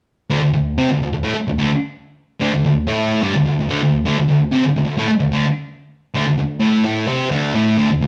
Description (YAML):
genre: rock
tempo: 128 BPM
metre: 4/4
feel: straight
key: unclear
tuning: A4 = 437 Hz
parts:
  - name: thick fuzz guitar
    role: solo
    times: 0.3-8.1 s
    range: D2 to C4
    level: -18 LUFS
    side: equal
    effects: distortion
room: moderate large studio reverb, RT60 1.0 s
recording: band playing live in one room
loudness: -18 LUFS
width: mono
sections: 0.3-7.8 A section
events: none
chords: 0.3 D5